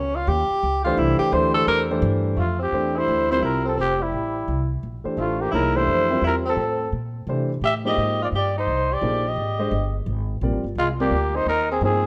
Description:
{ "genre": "modal jazz", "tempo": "172 BPM", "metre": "4/4", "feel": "swing 64% on 8ths", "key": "F major", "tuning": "A4 = 441 Hz", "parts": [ { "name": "warm tenor saxophone", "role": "second line", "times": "0.0-12.1 s", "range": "G3 to C5", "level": "-28 LUFS", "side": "equal", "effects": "none" }, { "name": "upright bass", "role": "bass", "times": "0.0-12.1 s", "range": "F1 to C3", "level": "-28 LUFS", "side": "equal", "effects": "none" }, { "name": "warm concert grand piano", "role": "accompaniment", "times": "0.9-12.0 s", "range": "E3 to E5", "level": "-28 LUFS", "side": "equal", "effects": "none" }, { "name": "growling trumpet", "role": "melody", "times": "2.4-12.1 s", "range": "E4 to E5", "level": "-26 LUFS", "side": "equal", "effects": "none" } ], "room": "moderate large studio reverb, RT60 1.4 s", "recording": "none", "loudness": "-22 LUFS", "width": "mono", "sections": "0.0-2.4 A section; 2.4-12.1 B section", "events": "tenor saxophone solo 0.0-2.4", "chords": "0.0 Eb7sus2; 1.0 C69; 2.4 Fmaj9; 8.0 Abmaj9" }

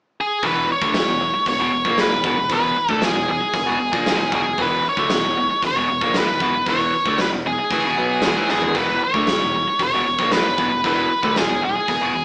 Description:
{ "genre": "classic rock", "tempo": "115 BPM", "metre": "4/4", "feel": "straight", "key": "E mixolydian", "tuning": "A4 = 440 Hz", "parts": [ { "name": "octave-fuzz lead guitar", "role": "melody", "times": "0.2-12.2 s", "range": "G#4 to C#5", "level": "-19 LUFS", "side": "equal", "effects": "distortion" }, { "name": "overdriven electric guitar", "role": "riff", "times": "0.4-12.2 s", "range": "E2 to B3", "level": "-23 LUFS", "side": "equal", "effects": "none" }, { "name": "modern bright fingered electric bass", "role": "bass", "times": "0.4-12.2 s", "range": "E1 to D2", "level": "-32 LUFS", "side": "equal", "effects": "none" }, { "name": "big rock drum kit", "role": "drums", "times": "0.4-12.0 s", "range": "hi-hat, kick drum, snare drum, toms", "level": "-23 LUFS", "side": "equal", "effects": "none" } ], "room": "moderate studio reverb, RT60 0.6 s", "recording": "band playing live in one room, small speaker sound", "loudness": "-16 LUFS", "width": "side -31 dB against mid", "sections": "0.4-12.2 A section", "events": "drum fill 8.5", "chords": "0.4 E" }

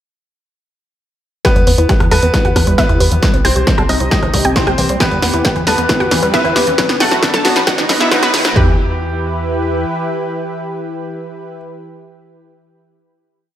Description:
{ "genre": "uplifting trance", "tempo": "135 BPM", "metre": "4/4", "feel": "straight", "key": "E harmonic minor", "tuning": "A4 = 440 Hz", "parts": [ { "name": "wide unison pluck", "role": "melody", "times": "1.4-11.6 s", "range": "B3 to A5", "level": "-19 LUFS", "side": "right 1 dB", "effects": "sidechain pumping, dub echo" }, { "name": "bright concert grand piano", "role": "second line", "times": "1.4-11.6 s", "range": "F#3 to D#5", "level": "-20 LUFS", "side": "left 1 dB", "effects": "dub echo" }, { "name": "lush unison pad", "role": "sustained chords", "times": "2.2-11.6 s", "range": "C3 to B4", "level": "-23 LUFS", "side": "equal", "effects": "chorus, sidechain pumping" }, { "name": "liquid acid bass", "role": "arpeggios", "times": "1.4-8.8 s", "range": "D#3 to G4", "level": "-22 LUFS", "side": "left 2 dB", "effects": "chorus, sidechain pumping, dub echo" }, { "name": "punchy analog drum machine", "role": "drums", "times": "1.4-8.5 s", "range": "hi-hat, rim click, snare drum", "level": "-17 LUFS", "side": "equal", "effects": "none" }, { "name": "techno drum kit", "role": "drums", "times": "1.4-8.7 s", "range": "kick drum, toms", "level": "-16 LUFS", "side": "equal", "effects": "distortion" }, { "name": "riser", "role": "sound effects", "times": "3.6-8.6 s", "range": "none", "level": "-26 LUFS", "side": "right 2 dB", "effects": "none" }, { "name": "tight sequencer bass", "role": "bass", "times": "1.6-9.9 s", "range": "B1 to E2", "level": "-19 LUFS", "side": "equal", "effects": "sidechain pumping" } ], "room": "moderate digital room reverb, RT60 1.0 s, digital ambience", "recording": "high-pass filter", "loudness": "-11 LUFS", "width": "side -11 dB against mid", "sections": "1.4-8.6 build; 8.6-12.1 final chord", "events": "build-up 1.4-8.6; drum fill 1.4-8.6; filter sweep on synth pluck 1.4-8.6; filter sweep on acid bass 1.4-8.6; filter sweep 1.4-8.6", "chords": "1.4 Em; 3.2 C; 5.0 Em; 6.8 B; 8.6 Em" }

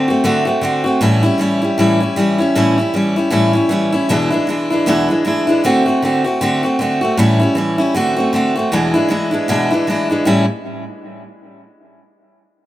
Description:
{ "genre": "rock", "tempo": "156 BPM", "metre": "4/4", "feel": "swing 58% on 8ths", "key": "A mixolydian", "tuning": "A4 = 443 Hz", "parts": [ { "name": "picked steel-string acoustic guitar", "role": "solo", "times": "0.0-10.4 s", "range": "E2 to F#4", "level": "-13 LUFS", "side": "equal", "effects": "analog delay" } ], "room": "moderate large studio reverb, RT60 1.1 s", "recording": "band playing live in one room", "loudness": "-13 LUFS", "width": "side -14 dB against mid", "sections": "0.0-10.3 A section; 10.3-11.8 B section", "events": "none", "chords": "0.0 D7; 1.0 A7; 4.1 E7; 5.6 D7; 7.2 A7; 7.9 D7; 8.7 E7; 10.3 A7" }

